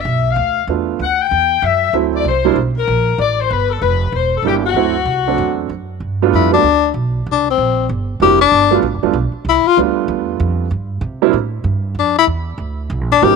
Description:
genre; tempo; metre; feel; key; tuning
jazz, big band swing; 192 BPM; 4/4; swing 61% on 8ths; G mixolydian; A4 = 440 Hz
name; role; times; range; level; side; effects
clear saxophone section; melody; 0.0-5.7 s; F#4 to G5; -16 LUFS; left 11 dB; slapback echo
upright bass; bass; 0.0-13.4 s; E1 to C3; -20 LUFS; right 2 dB; none
warm baby grand piano; accompaniment; 0.7-13.4 s; F#3 to F4; -16 LUFS; right 17 dB; none
breathy tenor saxophone; melody; 6.4-9.8, 12.0-13.4 s; C4 to G4; -13 LUFS; left 10 dB; none
room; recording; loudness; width
light reverb; 1960s-style stereo with parts hard left and right; -13 LUFS; side -4 dB against mid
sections
0.0-6.0 A section; 6.0-13.4 B section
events
tenor saxophone solo 6.0-13.4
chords
0.0 G7 (rootless); 1.0 D7; 2.3 C7(no3); 3.5 G7; 4.1 Em7b5; 4.8 D7; 6.0 G7; 7.3 C7; 8.5 G7; 11.0 C7

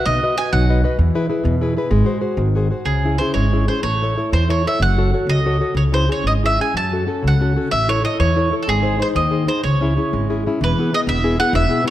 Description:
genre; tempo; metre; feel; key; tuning
italian folk, Italian serenade; 125 BPM (dotted quarters); 6/8; rubato; C# harmonic minor; A4 = 440 Hz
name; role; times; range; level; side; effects
bowl-back mandolin; melody; 0.0-11.9 s; G#4 to A5; -21 LUFS; right 2 dB; none
nylon-string guitar; accompaniment; 0.0-11.9 s; B2 to D#5; -20 LUFS; left 2 dB; none
upright bass; bass; 0.1-11.6 s; E1 to F#2; -19 LUFS; right 1 dB; none
room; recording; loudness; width
moderate concert hall reverb, RT60 1.8 s; dark, warm production; -16 LUFS; side -13 dB against mid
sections
0.0-2.9 A section; 2.9-10.6 B section; 10.6-11.9 A section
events
none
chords
0.1 B; 1.0 E; 1.9 G#7; 2.9 C#m; 3.8 A; 4.8 F#m; 5.8 C#m; 6.7 F#m; 7.7 A; 8.7 G#; 9.6 C#m; 10.6 E

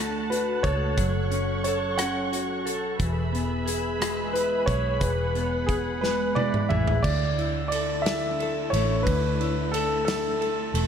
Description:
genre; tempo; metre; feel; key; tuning
six-eight pop ballad; 60 BPM (dotted quarters); 6/8; straight; unclear; A4 = 440 Hz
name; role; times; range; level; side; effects
direct-recorded clean electric guitar; accompaniment; 0.0-10.9 s; D3 to A4; -30 LUFS; equal; double-tracked left and right, slapback echo
warm studio string section; sustained chords; 0.0-10.9 s; A3 to C#6; -34 LUFS; equal; none
vintage muted fingered electric bass; bass; 0.0-10.9 s; E1 to D2; -29 LUFS; equal; none
clear concert grand piano; melody; 0.3-10.8 s; G#4 to F#5; -27 LUFS; equal; slapback echo, digital delay
loose indie drum kit; drums; 0.3-10.9 s; crash cymbal, hi-hat, kick drum, ride cymbal, rim click, snare drum, toms; -30 LUFS; equal; none
room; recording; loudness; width
moderate lush hall reverb, RT60 2.4 s; big arena sound; -23 LUFS; side -8 dB against mid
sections
0.0-7.0 A section; 7.0-10.9 B section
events
drum fill 6.0-7.0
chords
0.0 D; 1.0 F#m; 3.0 E; 7.0 Dsus2

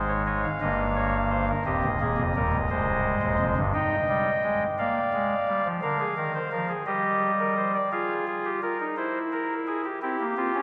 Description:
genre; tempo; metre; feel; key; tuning
classical, baroque-style 4-part fugue for pipe organ; 57 BPM (dotted quarters); 6/8; straight; unclear; A4 = 438 Hz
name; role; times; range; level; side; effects
pipe organ, soft reed; solo; 0.0-10.6 s; C1 to G5; -26 LUFS; equal; none
room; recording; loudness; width
wet cathedral reverb, RT60 4.7 s; none; -26 LUFS; mono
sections
0.0-7.9 A section; 7.9-10.6 B section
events
none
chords
0.0 Ab; 0.6 Eb/G; 1.7 Eb7; 2.7 Ab/C; 3.7 Eb; 4.8 Bb; 5.8 Bb7/D; 6.9 Eb/G; 7.9 Fm; 9.0 C/E; 10.0 C7

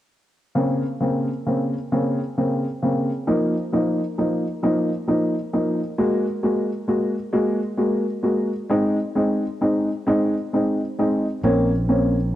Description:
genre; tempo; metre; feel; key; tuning
pop; 44 BPM (dotted quarters); 6/8; straight; Bb minor; A4 = 440 Hz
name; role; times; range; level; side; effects
dark upright piano; accompaniment; 0.5-12.2 s; Db3 to Gb4; -20 LUFS; equal; cassette tape
fretless electric bass; bass; 11.4-12.4 s; Bb1; -21 LUFS; equal; tube saturation
room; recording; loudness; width
light reverb; home recording on cassette; -20 LUFS; side -13 dB against mid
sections
0.6-11.4 A section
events
none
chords
0.6 Bbmadd9; 3.3 Ebsus2; 6.0 Gbadd9; 8.7 Ab; 11.4 Bbmadd9

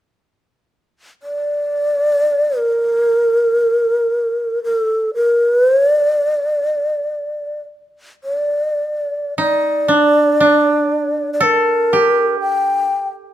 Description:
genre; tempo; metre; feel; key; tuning
japanese traditional, Japanese chamber music; free time; none; none; D miyako bushi; A4 = 442 Hz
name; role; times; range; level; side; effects
breathy mellow long shakuhachi; melody; 1.2-13.1 s; A4 to G5; -15 LUFS; equal; none
koto; second line; 9.4-13.3 s; D4 to A4; -16 LUFS; right 2 dB; none
room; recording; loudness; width
light reverb; close, detailed microphones; -14 LUFS; side -12 dB against mid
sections
0.0-9.4 A section; 9.4-13.3 B section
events
none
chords
none

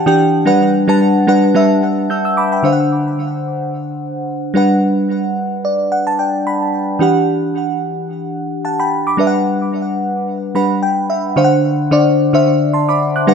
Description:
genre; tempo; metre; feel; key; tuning
amapiano; 110 BPM; 4/4; swing 55% on 16ths; G major; A4 = 439 Hz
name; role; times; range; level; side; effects
bell-like FM electric piano; solo; 0.0-13.3 s; D3 to G6; -13 LUFS; equal; chorus, digital delay
room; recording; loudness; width
moderate lush hall reverb, RT60 2.5 s; none; -13 LUFS; side -6 dB against mid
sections
0.0-2.6 A section; 2.6-11.4 B section; 11.4-13.3 C section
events
drop 0.0-2.6; FM electric piano fill 5.4-7.0, 10.3-11.4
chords
0.5 Gmaj7; 2.6 D7; 4.6 Gmaj7; 7.0 Em9; 9.2 Gmaj7; 11.4 D7

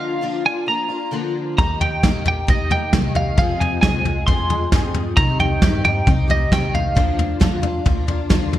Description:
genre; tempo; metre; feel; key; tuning
indie folk with a building arrangement; 134 BPM; 4/4; straight; unclear; A4 = 439 Hz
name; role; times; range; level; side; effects
twelve-string electric guitar; melody; 0.0-8.3 s; Eb5 to C6; -22 LUFS; right 2 dB; tremolo
picked steel-string acoustic guitar; accompaniment; 0.0-8.6 s; F2 to Ab4; -25 LUFS; left 3 dB; ensemble chorus
upright bass; bass; 1.6-8.6 s; Bb1 to G2; -24 LUFS; equal; none
soft brush drum kit; drums; 1.6-8.6 s; kick drum, snare drum, toms; -18 LUFS; equal; gated reverb
room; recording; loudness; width
light reverb, small room ambience; bright 1980s-style digital production; -16 LUFS; side -13 dB against mid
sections
0.0-8.6 A section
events
none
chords
0.0 Bb/D; 1.6 Eb; 3.4 Fm; 5.2 Cm; 7.0 Bb/D

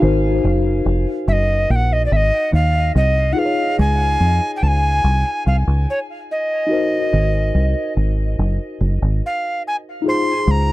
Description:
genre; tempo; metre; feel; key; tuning
lovers rock reggae; 72 BPM; 4/4; straight; Db major; A4 = 440 Hz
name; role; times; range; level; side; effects
tenor recorder; melody; 0.0-10.7 s; Db5 to C6; -20 LUFS; right 1 dB; tape echo
tine electric piano; accompaniment; 0.0-10.7 s; Eb4 to Db5; -23 LUFS; left 3 dB; medium stereo tremolo, tape echo
deep dub fingered electric bass; bass; 0.0-10.7 s; F1 to F2; -16 LUFS; equal; none
room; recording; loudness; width
light reverb; dry, close 1970s-style studio recording; -15 LUFS; side -17 dB against mid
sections
0.0-3.4 A section; 3.4-10.7 B section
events
recorder solo 0.0-3.4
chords
0.0 Ab7; 3.4 Db; 6.7 Ab7; 10.0 Dbmaj7

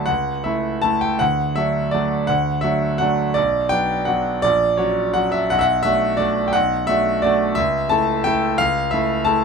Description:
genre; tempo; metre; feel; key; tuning
classical, piano waltz; 155-187 BPM; 3/4; rubato; unclear; A4 = 438 Hz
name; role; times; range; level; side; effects
clear concert grand piano; solo; 0.0-9.4 s; A#1 to B5; -17 LUFS; equal; none
room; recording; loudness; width
little or no reverb; close, detailed microphones; -17 LUFS; side -5 dB against mid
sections
0.0-9.4 A section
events
none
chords
0.1 A/C#; 1.2 D; 3.4 Bm; 4.5 F#/A#; 5.5 Bm7; 7.6 A/C#

